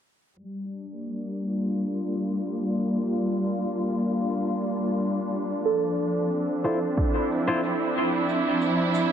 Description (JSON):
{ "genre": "ambient dub", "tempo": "91 BPM", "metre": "4/4", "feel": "straight", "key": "unclear", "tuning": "A4 = 439 Hz", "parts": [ { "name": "rich studio string section", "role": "sustained chords", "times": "0.4-9.1 s", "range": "F3 to F4", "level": "-25 LUFS", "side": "equal", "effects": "low-pass filter" }, { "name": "cabasa", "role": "drums", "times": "0.4-9.1 s", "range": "none", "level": "-50 LUFS", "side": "left 1 dB", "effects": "dub echo" }, { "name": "soft synth bell", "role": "arpeggios", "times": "5.7-9.1 s", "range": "A4", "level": "-30 LUFS", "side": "right 4 dB", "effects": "chorus, tape echo" }, { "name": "clean electric guitar", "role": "stabs", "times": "6.6-7.6 s", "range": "E4 to C5", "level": "-29 LUFS", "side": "left 2 dB", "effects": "dub echo" }, { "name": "electronic kick drum", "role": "drums", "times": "7.0-7.1 s", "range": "none", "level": "-25 LUFS", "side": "right 1 dB", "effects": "overdrive" } ], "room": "moderate huge ambient reverb, RT60 9.0 s", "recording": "low-pass filter", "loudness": "-24 LUFS", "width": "side -8 dB against mid", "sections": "0.4-9.1 A section", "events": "filter sweep on string section 0.4-9.1; filter sweep 0.4-9.1; kick drops out 8.3-9.1", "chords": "0.4 Gm7; 5.7 Dm9" }